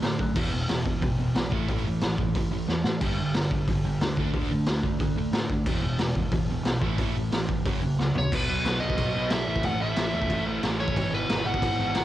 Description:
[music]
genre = punk rock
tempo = 181 BPM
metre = 4/4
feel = straight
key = unclear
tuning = A4 = 440 Hz
[part]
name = sludgy distorted guitar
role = riff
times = 0.0-12.0 s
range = E2 to D4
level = -33 LUFS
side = left 7 dB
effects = overdrive, cassette tape
[part]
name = sludgy distorted guitar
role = riff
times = 0.0-12.0 s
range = E2 to D4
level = -30 LUFS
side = right 6 dB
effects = overdrive, cassette tape
[part]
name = growling picked electric bass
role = bass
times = 0.0-12.0 s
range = E1 to D3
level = -32 LUFS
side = equal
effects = overdrive
[part]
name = raw garage drum kit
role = drums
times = 0.0-12.0 s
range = crash cymbal, hi-hat, kick drum, snare drum, toms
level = -28 LUFS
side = equal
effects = cassette tape
[part]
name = biting overdriven guitar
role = melody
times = 8.2-12.0 s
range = B4 to F#5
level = -29 LUFS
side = equal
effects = cassette tape
[sound]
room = light reverb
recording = home recording on cassette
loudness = -24 LUFS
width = side -13 dB against mid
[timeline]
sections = 0.0-8.3 A section; 8.3-12.0 B section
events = drum fill 2.7-3.0, 8.0-8.3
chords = 0.4 E5; 1.5 A5; 3.0 G5; 4.2 D5; 5.7 E5; 6.8 A5; 7.7 F#; 8.3 B; 9.5 A5; 11.0 E/G#

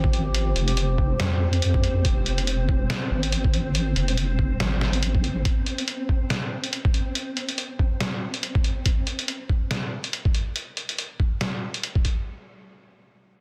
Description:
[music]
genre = deep dubstep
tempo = 141 BPM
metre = 4/4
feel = swing 56% on 16ths, half-time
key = F minor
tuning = A4 = 440 Hz
[part]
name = overtone-sweeping drone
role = sustained chords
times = 0.0-2.0 s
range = F3 to G4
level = -35 LUFS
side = equal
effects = chorus, built-in reverb
[part]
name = deep soft wobble bass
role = bass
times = 0.0-5.4 s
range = F1 to F2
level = -26 LUFS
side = equal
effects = chorus
[part]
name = electronic kick drum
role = drums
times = 0.0-12.1 s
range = none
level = -25 LUFS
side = equal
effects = none
[part]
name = flickering grainy texture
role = texture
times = 0.0-8.9 s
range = C4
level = -36 LUFS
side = equal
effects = built-in reverb
[part]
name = trip hop sampler-style drum kit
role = drums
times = 0.1-12.1 s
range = hi-hat, snare drum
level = -30 LUFS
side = equal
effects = none
[sound]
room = little or no reverb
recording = dense, heavily limited modern master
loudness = -25 LUFS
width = mono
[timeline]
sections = 0.0-12.3 A section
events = none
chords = 0.0 F5

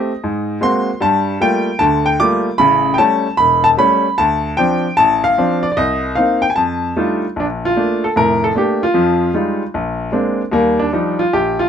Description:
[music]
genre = solo jazz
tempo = 151 BPM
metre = 4/4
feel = swing 65% on 8ths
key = Bb major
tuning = A4 = 440 Hz
[part]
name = clear baby grand piano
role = solo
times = 0.0-11.7 s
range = E1 to D6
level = -13 LUFS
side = equal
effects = none
[sound]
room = light reverb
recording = minimal, uncompressed stereo recording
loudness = -13 LUFS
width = side -8 dB against mid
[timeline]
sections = 0.0-7.4 A section; 7.4-11.7 B section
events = none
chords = 0.2 Ab9; 1.0 Gm9; 2.6 A7; 4.2 Dm7; 5.8 Cm7; 6.6 F13; 7.4 Bbmaj7; 8.9 Fm9; 9.7 Bb9; 10.5 Ebmaj9

